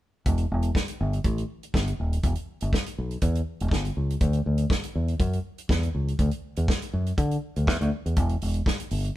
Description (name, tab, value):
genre	disco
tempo	121 BPM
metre	4/4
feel	straight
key	E dorian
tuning	A4 = 440 Hz
part	fingered electric bass	bass	0.3-9.1 s	D#1 to D3	-25 LUFS	equal	none
part	warm soul drum kit	drums	0.3-9.2 s	hi-hat, kick drum, snare drum	-27 LUFS	equal	none
room	moderate studio reverb, RT60 0.9 s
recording	band playing live in one room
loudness	-24 LUFS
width	side -15 dB against mid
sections	0.3-9.2 A section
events	none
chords	none